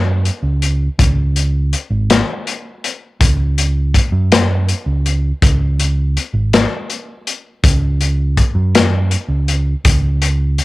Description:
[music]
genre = psychedelic rock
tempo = 54 BPM (dotted quarters)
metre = 6/8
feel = straight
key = unclear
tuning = A4 = 443 Hz
[part]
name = picked electric bass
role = bass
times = 0.0-10.6 s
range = G#1 to F#2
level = -15 LUFS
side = right 1 dB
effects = none
[part]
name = crunchy breakbeat drum kit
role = drums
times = 0.3-10.6 s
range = hi-hat, kick drum, snare drum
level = -14 LUFS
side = left 2 dB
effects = none
[sound]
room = light reverb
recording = 1960s-style stereo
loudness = -13 LUFS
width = side -19 dB against mid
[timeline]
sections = 0.0-10.6 A section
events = none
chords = none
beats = | 0.98 2.09 | 3.20 4.31 | 5.42 6.53 | 7.63 8.74 | 9.85

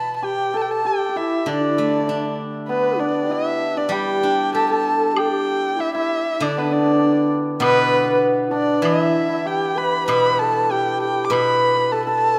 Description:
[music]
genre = chinese traditional, Chinese chamber ensemble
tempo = 97 BPM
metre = 2/4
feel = rubato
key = G gong mode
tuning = A4 = 440 Hz
[part]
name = dark erhu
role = melody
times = 0.0-12.4 s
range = B4 to D6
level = -24 LUFS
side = equal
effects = none
[part]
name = steel-string zither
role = accompaniment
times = 0.0-12.4 s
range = B2 to G4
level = -27 LUFS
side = equal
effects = none
[part]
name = hammered dulcimer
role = second line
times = 0.2-12.4 s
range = B3 to B4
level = -26 LUFS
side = equal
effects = none
[part]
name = low xiao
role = second line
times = 0.2-12.4 s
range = D4 to B4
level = -27 LUFS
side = equal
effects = none
[part]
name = woodblock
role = percussion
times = 5.2-11.5 s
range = none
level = -32 LUFS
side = equal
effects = none
[sound]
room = moderate scoring stage reverb, RT60 2.2 s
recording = none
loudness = -20 LUFS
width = mono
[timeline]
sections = 0.0-5.2 A section; 5.2-12.4 B section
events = none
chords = none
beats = | 0.24 0.86 | 1.47 2.08 | 2.69 3.30 | 3.92 4.54 | 5.16 5.79 | 6.41 7.02 | 7.62 8.23 | 8.84 9.47 | 10.09 10.71 | 11.32 11.92

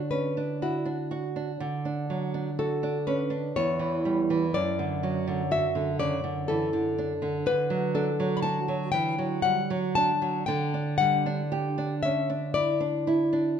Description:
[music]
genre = romantic duo for nylon-string guitar and classical guitar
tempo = 57-63 BPM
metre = 3/4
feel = rubato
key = unclear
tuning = A4 = 440 Hz
[part]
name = nylon-string guitar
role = melody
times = 0.0-13.5 s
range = F#4 to B5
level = -28 LUFS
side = left 4 dB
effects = none
[part]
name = nylon-string guitar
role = accompaniment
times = 0.0-13.6 s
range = E2 to G4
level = -27 LUFS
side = right 3 dB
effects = none
[sound]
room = moderate scoring stage reverb, RT60 1.4 s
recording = minimal, uncompressed stereo recording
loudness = -25 LUFS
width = side -8 dB against mid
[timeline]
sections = 0.0-13.6 A section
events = none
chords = 0.0 Bm/D; 1.6 D; 3.6 C#dim/E; 4.5 D/F#; 7.5 D; 10.5 Em7/D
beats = 0.61 | 1.60 2.58 3.55 | 4.55 5.51 6.48 | 7.46 8.43 9.44 | 10.47 11.51 12.55

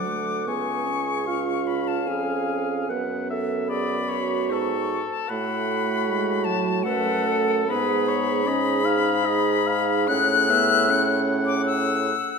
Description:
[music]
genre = classical, slow romantic movement for wind quintet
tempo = 75 BPM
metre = 3/4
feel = uneven beats, rubato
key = F# minor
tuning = A4 = 440 Hz
[part]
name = silver concert flute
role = melody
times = 0.0-12.4 s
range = F#5 to F#6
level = -26 LUFS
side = left 8 dB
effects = none
[part]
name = warm oboe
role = second line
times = 0.0-12.4 s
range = A4 to G#5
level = -28 LUFS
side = left 4 dB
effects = none
[part]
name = mellow French horn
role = accompaniment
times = 0.0-12.2 s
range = F#3 to D#4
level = -29 LUFS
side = left 1 dB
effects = none
[part]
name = warm clarinet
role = accompaniment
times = 0.0-12.1 s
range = E#4 to B4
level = -28 LUFS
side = right 10 dB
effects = none
[part]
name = warm bassoon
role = bass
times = 0.0-12.1 s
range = C#2 to A2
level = -28 LUFS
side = right 3 dB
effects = none
[sound]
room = wet concert hall reverb, RT60 1.9 s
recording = none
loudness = -21 LUFS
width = side -5 dB against mid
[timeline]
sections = 0.0-12.4 A section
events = none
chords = 0.5 C#7; 2.9 F#m; 7.7 G#madd11; 10.1 F#m/A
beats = | 0.48 1.28 2.09 | 2.90 3.69 4.50 | 5.29 6.08 6.85 | 7.68 8.46 9.24 | 10.09 10.89 11.66

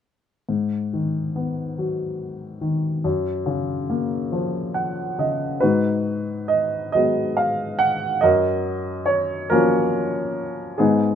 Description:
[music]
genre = classical, lyrical solo piano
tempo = 47 BPM (dotted quarters)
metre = 6/8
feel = rubato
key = unclear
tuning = A4 = 443 Hz
[part]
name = warm baby grand piano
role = solo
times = 0.5-11.2 s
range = F#2 to F#5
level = -20 LUFS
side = equal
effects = none
[sound]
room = light reverb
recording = none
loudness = -20 LUFS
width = side -8 dB against mid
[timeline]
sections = 0.5-5.6 A section; 5.6-11.2 B section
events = grand piano fill 4.3-5.6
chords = 0.5 G#m7; 3.0 F#maj7; 5.6 G#m7; 8.2 F#maj7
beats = | 0.49 1.78 | 3.03 4.31 | 5.62 6.94 | 8.23 9.52 | 10.80

